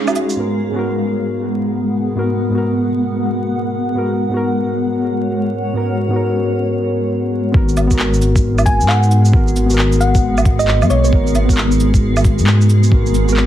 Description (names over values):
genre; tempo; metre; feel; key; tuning
future garage; 134 BPM; 4/4; swing 63% on 16ths; G# minor; A4 = 440 Hz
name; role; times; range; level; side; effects
muted felt-like synth keys; accompaniment; 0.0-13.5 s; G#2 to A#4; -19 LUFS; equal; chorus, vintage 12-bit sampler grit, sidechain pumping, analog delay
granular cloud pad; sustained chords; 0.0-13.5 s; G#3 to F#5; -20 LUFS; left 1 dB; built-in reverb, sidechain pumping
electronic shaker, woodblock, cabasa and handclaps; drums; 0.1-0.4, 7.7-13.5 s; none; -22 LUFS; right 2 dB; small room ambience
dark detuned saw bass; bass; 7.5-13.5 s; G#1 to G#2; -14 LUFS; equal; sidechain pumping
electronic kick drum; drums; 7.5-13.0 s; none; -14 LUFS; equal; small room ambience
thumb-piano-like synth pluck; melody; 8.7-11.1 s; C#5 to G#5; -19 LUFS; right 1 dB; chorus, tape echo
room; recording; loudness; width
light reverb, digital ambience; dense, heavily limited modern master, vinyl crackle; -13 LUFS; side -12 dB against mid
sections
0.4-7.5 A section; 7.5-13.5 B section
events
break 0.0-0.4; band accent 0.0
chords
0.4 G#m7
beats
| 0.38 0.83 1.28 1.72 | 2.17 2.62 3.07 3.52 | 3.96 4.41 4.86 5.31 | 5.75 6.20 6.65 7.10 | 7.54 7.99 8.44 8.89 | 9.34 9.78 10.23 10.68 | 11.13 11.57 12.02 12.47 | 12.92 13.37